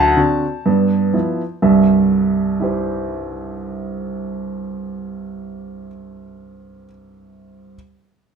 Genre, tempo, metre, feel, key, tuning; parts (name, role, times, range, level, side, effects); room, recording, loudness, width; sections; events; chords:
jazz, stride piano; 123 BPM; 4/4; swing 63% on 8ths; C major; A4 = 439 Hz
warm baby grand piano; solo; 0.0-7.8 s; C2 to A5; -17 LUFS; right 2 dB
light reverb; -16 LUFS; side -6 dB against mid
0.0-1.6 A section; 1.6-5.5 B section
0.0 D7; 0.7 G13; 1.6 C